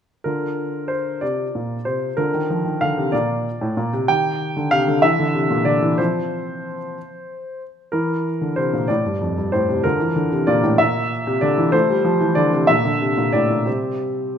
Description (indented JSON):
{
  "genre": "classical-period piano sonatina",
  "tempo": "63 BPM (dotted quarters)",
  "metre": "6/8",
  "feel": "straight",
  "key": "Bb major, F major from 7.9 s",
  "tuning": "A4 = 439 Hz",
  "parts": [
    { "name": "clear grand piano", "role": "solo", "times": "0.2-14.4 s", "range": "F2 to G5", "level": "-18 LUFS", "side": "equal", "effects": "none" }
  ],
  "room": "moderate recital hall reverb, RT60 1.6 s",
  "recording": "none",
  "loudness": "-17 LUFS",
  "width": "side -8 dB against mid",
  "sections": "0.3-14.4 A section",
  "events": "none",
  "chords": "0.3 Bb/D; 2.2 Bb; 4.1 Cm/Eb; 5.0 C7; 6.0 F5; 7.9 C7/E; 8.9 F; 9.8 Bb/D; 10.8 C9/Bb; 11.7 F; 12.7 Bb; 13.7 C5"
}